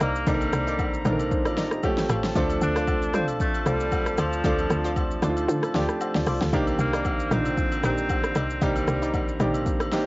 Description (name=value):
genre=amapiano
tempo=115 BPM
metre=4/4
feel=swing 55% on 16ths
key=C dorian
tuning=A4 = 441 Hz
part: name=edgy alto saxophone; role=melody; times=0.0-9.4 s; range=F3 to D4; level=-31 LUFS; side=equal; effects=cassette tape, analog delay
part: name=warm grand piano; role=accompaniment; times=0.0-10.1 s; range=D3 to F5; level=-27 LUFS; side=right 1 dB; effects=cassette tape
part: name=warm brass ensemble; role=sustained chords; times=0.0-10.1 s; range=Eb3 to Bb5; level=-37 LUFS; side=left 1 dB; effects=cassette tape
part: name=analog pluck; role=stabs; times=0.0-10.0 s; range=Eb4 to D5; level=-34 LUFS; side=left 2 dB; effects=chorus, cassette tape, analog delay
part: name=woody log drum bass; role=bass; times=0.0-9.9 s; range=A1 to D3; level=-28 LUFS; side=equal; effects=none
part: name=deep house drum kit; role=drums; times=0.0-10.1 s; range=hi-hat, kick drum, rim click, shaker, snare drum, toms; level=-28 LUFS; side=equal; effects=overdrive, cassette tape
part: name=agogo bells and woodblock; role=percussion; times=0.0-9.9 s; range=none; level=-37 LUFS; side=left 3 dB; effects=none
room=light reverb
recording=home recording on cassette, nothing above 7.6 kHz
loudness=-22 LUFS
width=side -22 dB against mid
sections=0.0-10.1 A section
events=kick muted 5.5-6.5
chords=0.0 Cm9; 1.8 A7alt; 2.4 Dm7; 6.5 Cm9